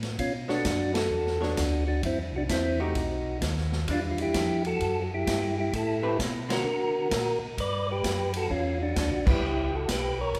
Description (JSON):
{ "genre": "soul jazz organ trio", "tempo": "130 BPM", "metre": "4/4", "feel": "swing 66% on 8ths", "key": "unclear", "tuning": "A4 = 441 Hz", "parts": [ { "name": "mellow tonewheel organ", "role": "bass", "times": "0.0-10.4 s", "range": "G1 to D3", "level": "-34 LUFS", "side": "equal", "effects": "chorus vibrato, slow rotary speaker" }, { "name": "swinging big-band drum kit", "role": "drums", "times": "0.0-10.4 s", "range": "crash cymbal, hi-hat, kick drum, ride cymbal, snare drum", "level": "-35 LUFS", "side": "equal", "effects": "none" }, { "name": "percussive tonewheel organ", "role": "melody", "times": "0.2-10.4 s", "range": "C4 to D5", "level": "-31 LUFS", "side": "equal", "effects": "slow rotary speaker" }, { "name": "archtop guitar, miked and amplified", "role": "accompaniment", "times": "0.5-9.4 s", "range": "D3 to C#5", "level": "-38 LUFS", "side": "equal", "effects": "none" } ], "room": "wet recital hall reverb, RT60 1.7 s", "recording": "recorded in a church or concert hall", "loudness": "-28 LUFS", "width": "mono", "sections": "0.2-10.4 A section", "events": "band accent 0.9, 6.4, 9.2", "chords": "0.2 Bm9; 2.0 F#m7b5; 3.0 B; 3.9 Em9; 5.7 Am9; 6.7 Daug; 7.6 Gmaj7#11; 9.4 C#m7b5" }